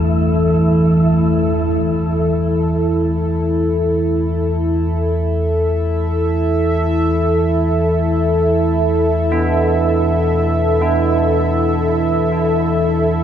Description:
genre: dark ambient drone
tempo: free time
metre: none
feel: none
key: unclear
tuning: A4 = 440 Hz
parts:
  - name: sweeping resonant pad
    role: sustained chords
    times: 0.0-13.2 s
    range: E3 to E5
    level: -16 LUFS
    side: right 1 dB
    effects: chorus
  - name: carillon bells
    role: arpeggios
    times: 0.0-0.8, 9.3-13.2 s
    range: G2 to B3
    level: -27 LUFS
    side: right 2 dB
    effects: diffuse ambient delay
  - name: deep rumbling drone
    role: drone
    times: 0.0-13.2 s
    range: E2 to E3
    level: -18 LUFS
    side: left 1 dB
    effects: built-in reverb
  - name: wind-like tuned noise texture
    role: texture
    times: 0.0-1.8 s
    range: E4 to E5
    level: -28 LUFS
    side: right 2 dB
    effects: built-in reverb
room: wet cathedral reverb, RT60 5.8 s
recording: none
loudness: -14 LUFS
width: side -9 dB against mid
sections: 0.0-1.8 A section; 1.8-13.2 B section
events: none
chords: 0.0 A5; 1.8 E5

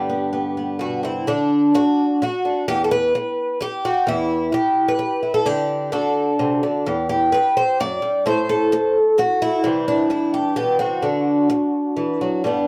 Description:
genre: folk, solo fingerstyle acoustic guitar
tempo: 129 BPM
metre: 3/4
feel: straight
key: unclear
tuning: A4 = 437 Hz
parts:
  - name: picked twelve-string acoustic guitar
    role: solo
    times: 0.0-12.7 s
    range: E2 to D5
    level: -20 LUFS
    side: equal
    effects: none
room: light reverb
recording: none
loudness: -20 LUFS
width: mono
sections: 0.0-1.3 A section; 1.3-12.4 B section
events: none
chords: 0.0 G; 1.3 D; 2.7 N.C.; 5.9 D; 6.9 Em; 8.3 Am; 9.6 C; 11.0 D

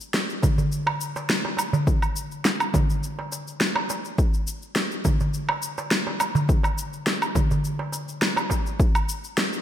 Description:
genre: downtempo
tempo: 104 BPM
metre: 4/4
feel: straight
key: none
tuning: none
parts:
  - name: electronic shaker, snare drum and woodblock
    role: drums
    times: 0.0-9.6 s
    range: none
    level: -25 LUFS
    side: equal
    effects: small room ambience
  - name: electronic kick drum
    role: drums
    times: 0.4-8.9 s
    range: none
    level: -22 LUFS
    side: equal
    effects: small room ambience
  - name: darbuka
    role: percussion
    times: 0.4-8.6 s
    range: none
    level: -28 LUFS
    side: right 2 dB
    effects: none
room: moderate plate reverb, RT60 1.9 s, digital ambience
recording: dreamy mix soaked in reverb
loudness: -22 LUFS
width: side -11 dB against mid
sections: 0.0-8.8 A section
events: none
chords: none

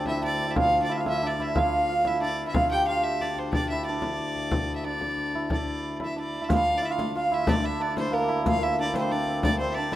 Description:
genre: medieval dance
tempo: 182 BPM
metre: 3/4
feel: straight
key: D minor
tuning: A4 = 440 Hz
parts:
  - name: clear fiddle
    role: melody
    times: 0.0-10.0 s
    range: Bb4 to G5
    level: -29 LUFS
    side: left 1 dB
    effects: none
  - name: hammered dulcimer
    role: second line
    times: 0.0-10.0 s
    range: Bb3 to G4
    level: -27 LUFS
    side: right 2 dB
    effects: none
  - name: warm viola da gamba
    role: drone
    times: 0.0-10.0 s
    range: D2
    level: -35 LUFS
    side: left 3 dB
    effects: none
  - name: frame drum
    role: percussion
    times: 0.1-10.0 s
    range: none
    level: -29 LUFS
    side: left 1 dB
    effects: none
  - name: riq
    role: percussion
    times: 6.5-9.9 s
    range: none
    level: -32 LUFS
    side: left 3 dB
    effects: none
room: moderate plate reverb, RT60 3.6 s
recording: rough home demo mix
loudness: -23 LUFS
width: side -13 dB against mid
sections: 0.0-6.5 A section; 6.5-10.0 A section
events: none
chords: none

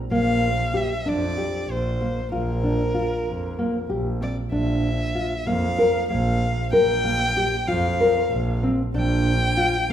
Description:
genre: contemporary instrumental, chamber music in an uneven meter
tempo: 190 BPM (eighths)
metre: 7/8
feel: straight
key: Bb lydian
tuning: A4 = 440 Hz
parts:
  - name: dark violin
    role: melody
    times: 0.1-9.9 s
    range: Bb4 to G5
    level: -26 LUFS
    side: equal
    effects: none
  - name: nylon-string guitar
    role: arpeggios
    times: 0.1-9.9 s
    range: Bb3 to Bb4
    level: -23 LUFS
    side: left 1 dB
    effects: none
  - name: clear double bass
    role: bass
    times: 0.1-9.9 s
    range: Bb1 to F2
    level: -25 LUFS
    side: right 1 dB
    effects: none
room: wet recital hall reverb, RT60 1.7 s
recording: minimal, uncompressed stereo recording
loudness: -20 LUFS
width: side -10 dB against mid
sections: 0.0-4.5 A section; 4.5-9.9 B section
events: none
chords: 0.0 Bb5

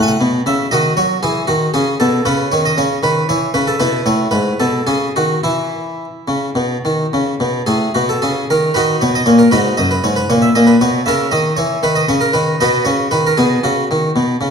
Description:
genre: classical, baroque-style suite movement for harpsichord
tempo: 70-79 BPM (dotted quarters)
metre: 12/8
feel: rubato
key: E major, B major from 8.8 s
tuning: A4 = 440 Hz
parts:
  - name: harpsichord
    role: solo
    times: 0.0-14.5 s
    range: F#2 to G#5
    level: -13 LUFS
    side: equal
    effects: none
room: wet recital hall reverb, RT60 1.6 s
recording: dark, warm production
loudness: -13 LUFS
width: side -6 dB against mid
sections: 0.0-8.8 A section; 8.8-14.5 A section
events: none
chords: 0.0 F#m/A; 0.7 B/D#; 2.3 C#m; 3.8 E; 4.6 B; 5.4 E5; 8.8 B; 10.3 A#dim; 11.9 B

